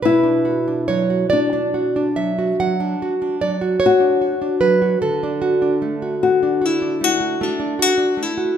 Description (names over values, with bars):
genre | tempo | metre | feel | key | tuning
romantic duo for nylon-string guitar and classical guitar | 46-53 BPM (dotted quarters) | 12/8 | rubato | B minor | A4 = 441 Hz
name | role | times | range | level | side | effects
nylon-string guitar | accompaniment | 0.0-8.6 s | B2 to F#5 | -18 LUFS | right 3 dB | none
nylon-string guitar | melody | 0.1-8.6 s | D4 to F#4 | -19 LUFS | left 6 dB | none
room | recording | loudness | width
moderate recital hall reverb, RT60 1.8 s | minimal, uncompressed stereo recording | -16 LUFS | side -9 dB against mid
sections
0.0-8.6 A section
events
none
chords
0.0 Bm; 5.0 D